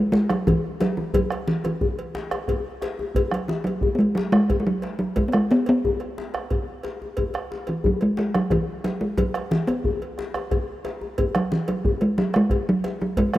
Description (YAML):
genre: west african traditional, West African drum ensemble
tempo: 120 BPM (dotted quarters)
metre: 12/8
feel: straight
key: E major pentatonic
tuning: A4 = 440 Hz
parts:
  - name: talking drum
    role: melody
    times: 0.0-13.4 s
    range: E3 to B3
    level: -22 LUFS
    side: equal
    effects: none
  - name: bombo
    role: percussion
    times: 0.1-13.4 s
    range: none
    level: -28 LUFS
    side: right 1 dB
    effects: none
  - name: djembe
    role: percussion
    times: 0.1-13.4 s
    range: none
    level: -28 LUFS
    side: left 4 dB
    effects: none
  - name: cowbell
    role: percussion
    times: 0.3-13.4 s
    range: none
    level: -35 LUFS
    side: right 4 dB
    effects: none
room: light reverb, small room ambience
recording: rough home demo mix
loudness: -21 LUFS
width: side -15 dB against mid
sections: 0.0-13.4 A section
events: none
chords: none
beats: 0.14 0.64 | 1.15 1.65 2.15 2.65 | 3.16 3.66 4.16 4.66 | 5.17 5.67 6.17 6.67 | 7.17 7.68 8.18 8.68 | 9.18 9.68 10.18 10.68 | 11.18 11.68 12.18 12.68 | 13.18